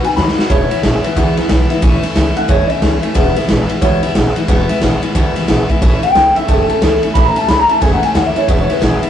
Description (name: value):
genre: rockabilly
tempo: 180 BPM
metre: 4/4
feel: swing 63% on 8ths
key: E major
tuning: A4 = 441 Hz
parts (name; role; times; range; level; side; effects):
- picked steel-string acoustic guitar; accompaniment; 0.0-9.1 s; E2 to F#4; -18 LUFS; left 1 dB; none
- upright bass; bass; 0.0-9.1 s; E1 to D#2; -17 LUFS; right 1 dB; none
- raw garage drum kit; drums; 0.0-9.1 s; kick drum, ride cymbal, snare drum; -16 LUFS; equal; none
- electric guitar through a small old amp; melody; 0.1-9.0 s; E4 to B5; -16 LUFS; left 1 dB; phaser, analog delay
room: light reverb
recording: rough rehearsal-room recording, warm saturation, nothing above 10.8 kHz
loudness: -11 LUFS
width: side -10 dB against mid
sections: 0.5-9.1 A section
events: drum fill 0.2-0.5; clean electric guitar solo 0.5-9.1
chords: 0.5 E; 1.8 A; 3.2 E; 5.8 A; 8.5 E